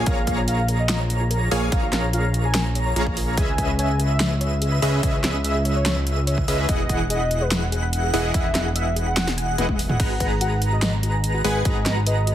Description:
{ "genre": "future bass", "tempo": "145 BPM", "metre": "4/4", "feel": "half-time", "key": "unclear", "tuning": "A4 = 441 Hz", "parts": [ { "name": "airy dreamy lead", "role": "arpeggios", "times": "0.0-12.3 s", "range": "E5 to A#5", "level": "-31 LUFS", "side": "equal", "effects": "chorus, sidechain pumping" }, { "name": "soft round pluck", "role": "arpeggios", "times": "0.0-12.3 s", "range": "E#4 to B5", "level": "-35 LUFS", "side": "left 2 dB", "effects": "chorus, cassette tape, sidechain pumping, ping-pong delay" }, { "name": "supersaw stab", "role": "riff", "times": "0.0-12.3 s", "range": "E3 to A#5", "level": "-27 LUFS", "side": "equal", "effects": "sidechain pumping" }, { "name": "fat analog bass", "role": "bass", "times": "0.0-12.3 s", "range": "E1 to C#2", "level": "-23 LUFS", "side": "equal", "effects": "sidechain pumping" }, { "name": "warm velvety synth lead", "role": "melody", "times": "0.1-12.3 s", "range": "B4 to G#5", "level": "-30 LUFS", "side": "equal", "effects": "chorus, tremolo, sidechain pumping, ping-pong delay" }, { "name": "big-room dance drum kit", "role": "drums", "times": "0.1-12.3 s", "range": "crash cymbal, hi-hat, snare drum, toms", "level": "-25 LUFS", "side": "equal", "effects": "overdrive" }, { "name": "electronic kick drum", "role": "drums", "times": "0.1-11.7 s", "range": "none", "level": "-24 LUFS", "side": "equal", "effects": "overdrive" } ], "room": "light reverb", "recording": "heavily compressed radio sound", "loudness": "-19 LUFS", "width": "side -11 dB against mid", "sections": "0.0-12.3 A section", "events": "drum fill 9.6-10.0", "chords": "0.0 A#m7; 3.4 C#m7; 6.7 Emaj7; 10.0 G#m7", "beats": "| 0.07 0.48 0.89 1.31 | 1.72 2.13 2.55 2.96 | 3.38 3.79 4.20 4.62 | 5.03 5.45 5.86 6.27 | 6.69 7.10 7.51 7.93 | 8.34 8.76 9.17 9.58 | 10.00 10.41 10.82 11.24 | 11.65 12.07" }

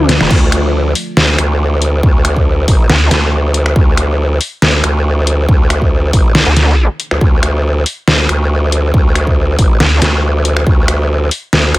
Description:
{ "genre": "heavy wobble dubstep", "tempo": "139 BPM", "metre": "4/4", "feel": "swing 54% on 16ths, half-time", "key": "D minor", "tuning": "A4 = 440 Hz", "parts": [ { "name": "growl bass", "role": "bass", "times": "0.0-11.8 s", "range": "F1 to D2", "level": "-12 LUFS", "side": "equal", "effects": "chorus, overdrive" }, { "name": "dubstep drum kit", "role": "drums", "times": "0.1-11.8 s", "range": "crash cymbal, finger snaps, hi-hat, snare drum", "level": "-13 LUFS", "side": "left 1 dB", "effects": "none" }, { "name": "electronic kick drum", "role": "drums", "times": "0.3-10.8 s", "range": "none", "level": "-11 LUFS", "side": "equal", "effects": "none" }, { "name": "vowel-sweep wobble bass", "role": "bass", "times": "2.9-3.1, 6.5-6.9, 9.8-10.0 s", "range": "D2", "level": "-10 LUFS", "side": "equal", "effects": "chorus, overdrive" } ], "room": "digital ambience", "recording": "none", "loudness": "-9 LUFS", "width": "side -18 dB against mid", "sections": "0.3-11.8 A section", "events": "drum fill 0.0-0.3; drop 0.3-11.8", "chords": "0.3 D5", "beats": "| 0.31 0.74 1.17 1.60 | 2.03 2.46 2.90 3.33 | 3.76 4.19 4.62 5.05 | 5.49 5.92 6.35 6.78 | 7.21 7.64 8.08 8.51 | 8.94 9.37 9.80 10.23 | 10.66 11.10 11.53" }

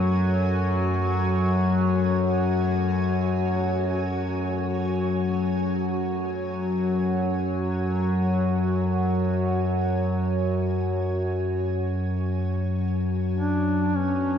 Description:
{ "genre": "dark ambient drone", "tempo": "free time", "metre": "none", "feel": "none", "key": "F# minor", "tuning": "A4 = 440 Hz", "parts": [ { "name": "granular cloud pad", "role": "sustained chords", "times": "0.0-14.4 s", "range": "F#4 to G#5", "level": "-35 LUFS", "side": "right 1 dB", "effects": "built-in reverb" }, { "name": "analog drone", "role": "drone", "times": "0.0-14.4 s", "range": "F#2 to F#3", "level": "-23 LUFS", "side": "left 1 dB", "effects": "chorus" }, { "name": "bronze singing bowl", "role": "texture", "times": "0.0-14.4 s", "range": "A3 to B4", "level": "-43 LUFS", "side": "left 2 dB", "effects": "none" }, { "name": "mellow duduk", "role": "melody", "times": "13.4-14.4 s", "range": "C#4 to D4", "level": "-24 LUFS", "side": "right 2 dB", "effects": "none" } ], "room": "wet cathedral reverb, RT60 5.0 s", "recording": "dark, warm production, nothing above 7.4 kHz", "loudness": "-22 LUFS", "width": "side -8 dB against mid", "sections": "0.0-14.0 A section", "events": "fade-out on ambient pad 0.0-14.0", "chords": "0.0 F#m", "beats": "free time" }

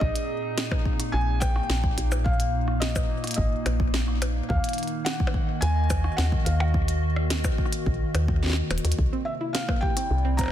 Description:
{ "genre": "IDM", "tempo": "107 BPM", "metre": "4/4", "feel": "straight", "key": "unclear", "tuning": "A4 = 440 Hz", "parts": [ { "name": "felt-muted upright piano", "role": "melody", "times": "0.0-10.5 s", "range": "Eb5 to Bb5", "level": "-32 LUFS", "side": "left 1 dB", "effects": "digital delay" }, { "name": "warbly tape-like pad", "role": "sustained chords", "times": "0.0-10.5 s", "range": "Bb2 to Eb5", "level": "-31 LUFS", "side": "right 1 dB", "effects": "chorus, built-in reverb" }, { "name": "woody FM bass", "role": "bass", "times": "0.0-10.5 s", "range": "Eb1 to Eb2", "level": "-25 LUFS", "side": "equal", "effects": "none" }, { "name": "electronic kick drum", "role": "drums", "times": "0.0-10.5 s", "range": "none", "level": "-26 LUFS", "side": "equal", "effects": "studio reverb" }, { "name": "glitchy drum kit", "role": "drums", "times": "0.2-10.5 s", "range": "cabasa, hi-hat, percussion blips, rim click, snare drum", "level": "-31 LUFS", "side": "equal", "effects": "studio reverb, ping-pong delay" }, { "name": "soft round pluck", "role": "arpeggios", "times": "9.1-10.5 s", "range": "Bb3 to G4", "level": "-32 LUFS", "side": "right 5 dB", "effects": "chorus, ping-pong delay" } ], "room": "little or no reverb", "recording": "dense, heavily limited modern master", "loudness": "-23 LUFS", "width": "side -11 dB against mid", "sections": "0.0-10.5 A section", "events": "drum fill 8.7", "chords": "0.0 Bbsus4; 4.5 Ebmadd9; 9.0 Cadd9", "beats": "| 0.01 0.57 1.14 1.70 | 2.26 2.82 3.38 3.94 | 4.50 5.06 5.62 6.18 | 6.74 7.30 7.86 8.43 | 8.99 9.55 10.11" }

